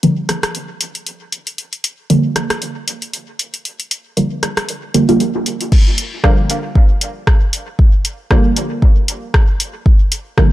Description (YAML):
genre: dub techno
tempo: 116 BPM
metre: 4/4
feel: swing 56% on 16ths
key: G minor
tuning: A4 = 440 Hz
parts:
  - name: filtered dub chord stab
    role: stabs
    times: 0.0-10.5 s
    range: D3 to Bb3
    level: -17 LUFS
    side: right 1 dB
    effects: chorus, phaser, cassette tape, sidechain pumping, dub echo
  - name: deep house drum kit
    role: drums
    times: 0.0-10.5 s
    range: crash cymbal, hi-hat, rim click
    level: -20 LUFS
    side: equal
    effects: none
  - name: electronic kick drum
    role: drums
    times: 5.7-10.5 s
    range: none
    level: -11 LUFS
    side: equal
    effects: none
room: little or no reverb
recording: dry, gritty hardware recording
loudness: -13 LUFS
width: side -15 dB against mid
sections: 0.0-5.7 A section; 5.7-10.5 B section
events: filter sweep on synth stab 0.0-5.7, 5.7-10.5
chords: 0.0 Gm7